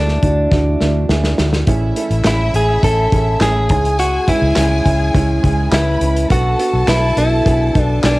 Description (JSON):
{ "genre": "piano-driven pop", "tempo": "104 BPM", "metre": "4/4", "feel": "straight", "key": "unclear", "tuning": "A4 = 440 Hz", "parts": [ { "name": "direct-recorded clean electric guitar", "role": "melody", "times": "0.0-8.2 s", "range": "D4 to A4", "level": "-18 LUFS", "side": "equal", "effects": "cassette tape, plate reverb" }, { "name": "clear upright piano", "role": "accompaniment", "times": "0.0-8.2 s", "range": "G#2 to B4", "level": "-22 LUFS", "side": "right 4 dB", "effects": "cassette tape, plate reverb" }, { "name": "vintage muted fingered electric bass", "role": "bass", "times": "0.0-8.2 s", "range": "A1 to D2", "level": "-17 LUFS", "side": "equal", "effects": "none" }, { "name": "loose indie drum kit", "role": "drums", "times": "0.1-8.2 s", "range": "handclaps, hi-hat, kick drum, snare drum", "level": "-18 LUFS", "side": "equal", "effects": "none" }, { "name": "rich symphonic violin section", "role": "second line", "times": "1.7-8.2 s", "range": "E4 to B5", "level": "-25 LUFS", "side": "left 1 dB", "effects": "cassette tape, plate reverb" } ], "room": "light reverb", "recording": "home recording on cassette", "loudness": "-12 LUFS", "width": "side -20 dB against mid", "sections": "0.0-8.2 A section", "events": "drum fill 0.5-1.7", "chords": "0.0 Dadd9; 1.7 Amaj7; 3.7 C#m; 6.3 Bm7", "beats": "0.52 1.10 | 1.67 2.25 2.83 3.41 | 3.99 4.57 5.15 5.72 | 6.30 6.88 7.46 8.04" }